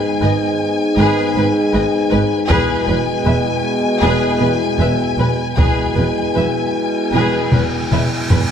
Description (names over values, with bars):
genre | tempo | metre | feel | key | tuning
cinematic, epic orchestral film score | 78 BPM | 4/4 | straight | unclear | A4 = 436 Hz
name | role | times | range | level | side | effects
warm symphonic violin section | melody | 0.0-8.5 s | G#5 | -24 LUFS | left 6 dB | none
clear trombone section | sustained chords | 0.0-8.3 s | G#2 to G#3 | -21 LUFS | equal | none
mellow French horn section | sustained chords | 0.0-8.3 s | B3 to E4 | -22 LUFS | left 2 dB | none
clear symphonic violin section | second line | 0.2-8.4 s | G#4 to E5 | -25 LUFS | left 3 dB | none
rich symphonic viola section | accompaniment | 0.2-8.4 s | B4 | -24 LUFS | right 1 dB | none
rich symphonic cello section | bass | 0.2-8.4 s | E2 to G#2 | -22 LUFS | right 2 dB | none
rich symphonic double bass section | bass | 0.2-8.4 s | E1 to G#1 | -22 LUFS | right 3 dB | none
taiko ensemble | drums | 2.5-8.5 s | none | -18 LUFS | left 1 dB | none
cymbal swell | sound effects | 6.9-8.5 s | none | -27 LUFS | right 1 dB | none
room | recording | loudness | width
wet scoring stage reverb, RT60 1.9 s | none | -14 LUFS | side -8 dB against mid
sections
0.0-8.5 A section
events
cymbal swell 6.9-8.5; drum fill 7.5-8.5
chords
0.0 G#m; 2.5 E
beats
0.21 0.97 1.73 | 2.49 3.26 4.02 4.79 | 5.57 6.36 7.14 7.92